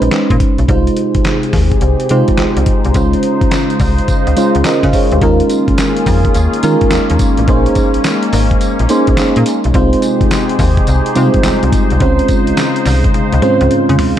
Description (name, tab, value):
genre	R&B, new jack swing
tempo	106 BPM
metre	4/4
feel	swing 65% on 16ths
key	Bb dorian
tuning	A4 = 438 Hz
part	mellow FM electric piano	accompaniment	0.0-14.2 s	G3 to F5	-14 LUFS	right 1 dB	chorus
part	slap-like FM bass	bass	0.0-14.0 s	Ab1 to Eb3	-14 LUFS	equal	none
part	dusty soul sampler-style drum kit	drums	0.0-14.2 s	handclaps, hi-hat, kick drum, snare drum, tambourine, toms	-15 LUFS	equal	none
part	sweeping resonant pad	sustained chords	0.7-14.2 s	C3 to C5	-18 LUFS	left 1 dB	wide subtle chorus
room	light reverb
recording	dark, warm production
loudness	-10 LUFS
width	side -11 dB against mid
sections	0.0-5.2 A section; 5.2-14.2 B section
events	drum fill 13.1-14.2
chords	0.0 Bbm11; 0.7 Fm7/C; 2.9 Dbmaj7; 5.2 Eb9sus4; 7.5 Bbm11; 9.7 Fm7/C; 12.0 Dbmaj7